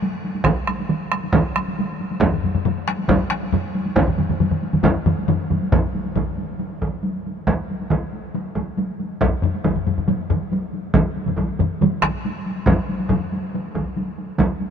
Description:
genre	japanese traditional, taiko drum ensemble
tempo	138 BPM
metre	4/4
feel	straight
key	none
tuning	none
part	taiko ensemble	percussion	0.0-14.7 s	none	-25 LUFS	equal	none
part	solo taiko drums	percussion	0.4-8.0, 10.9-14.5 s	none	-25 LUFS	right 4 dB	none
part	taiko ensemble	percussion	0.4-14.5 s	none	-23 LUFS	right 2 dB	none
part	taiko ensemble	percussion	2.2-6.3, 9.2-13.2 s	none	-24 LUFS	left 4 dB	none
room	moderate huge ambient reverb, RT60 7.5 s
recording	minimal, uncompressed stereo recording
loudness	-19 LUFS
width	side -7 dB against mid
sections	0.0-5.7 A section; 5.7-14.7 B section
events	none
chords	none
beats	0.02 | 0.46 0.90 1.34 1.78 | 2.22 2.66 3.10 3.54 | 3.98 4.42 4.85 5.29 | 5.73 6.17 6.60 7.04 | 7.47 7.91 8.35 8.78 | 9.21 9.65 10.08 10.51 | 10.95 11.38 11.81 12.24 | 12.68 13.11 13.54 13.97 | 14.40

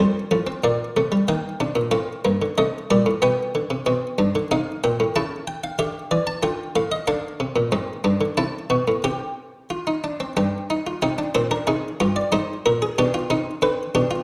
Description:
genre	classical, baroque-style 3-part fugue for harpsichord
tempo	93 BPM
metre	3/4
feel	straight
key	C minor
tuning	A4 = 444 Hz
part	buff-stop harpsichord	solo	0.0-14.2 s	F2 to A5	-22 LUFS	equal	none
room	wet recital hall reverb, RT60 1.3 s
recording	none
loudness	-23 LUFS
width	mono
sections	0.0-11.0 A section; 11.0-14.2 B section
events	none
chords	0.0 F; 0.6 Bbmaj7; 1.3 Eb; 2.6 Am7b5/C; 3.2 G/B; 4.5 Cm; 5.2 A7/C#; 6.4 Dm; 7.1 Dm7b5; 8.4 Am69; 9.0 Gsus4/C; 10.4 G5; 11.0 Cm; 12.3 Abadd9; 13.0 G7/B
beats	0.64 | 1.28 1.93 2.58 | 3.21 3.86 4.51 | 5.15 5.79 6.43 | 7.07 7.72 8.38 | 9.04 9.70 10.36 | 11.03 11.68 12.33 | 12.98 13.62

